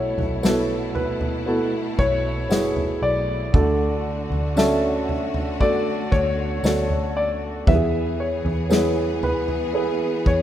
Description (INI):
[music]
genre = pop ballad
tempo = 58 BPM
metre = 4/4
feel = straight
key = E major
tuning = A4 = 440 Hz
[part]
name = warm grand piano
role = melody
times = 0.0-10.4 s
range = B4 to E5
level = -26 LUFS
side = left 2 dB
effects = ping-pong delay
[part]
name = warm upright piano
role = accompaniment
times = 0.0-10.4 s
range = B2 to B4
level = -24 LUFS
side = right 2 dB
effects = none
[part]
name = clear studio string section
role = sustained chords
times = 0.0-10.4 s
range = B2 to G#4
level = -31 LUFS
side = left 1 dB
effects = none
[part]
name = vintage muted fingered electric bass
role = bass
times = 0.0-10.4 s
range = F#1 to E2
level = -28 LUFS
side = equal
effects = none
[part]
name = unplugged drum kit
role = drums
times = 0.2-10.4 s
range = kick drum, snare drum, toms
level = -23 LUFS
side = equal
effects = none
[part]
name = tambourine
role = percussion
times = 0.4-8.9 s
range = none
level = -42 LUFS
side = left 5 dB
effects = none
[sound]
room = moderate lush hall reverb, RT60 2.4 s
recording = rough home demo mix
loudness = -19 LUFS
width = side -11 dB against mid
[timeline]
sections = 0.0-10.4 A section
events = none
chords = 0.0 B7sus4; 3.5 Dmaj7; 7.7 E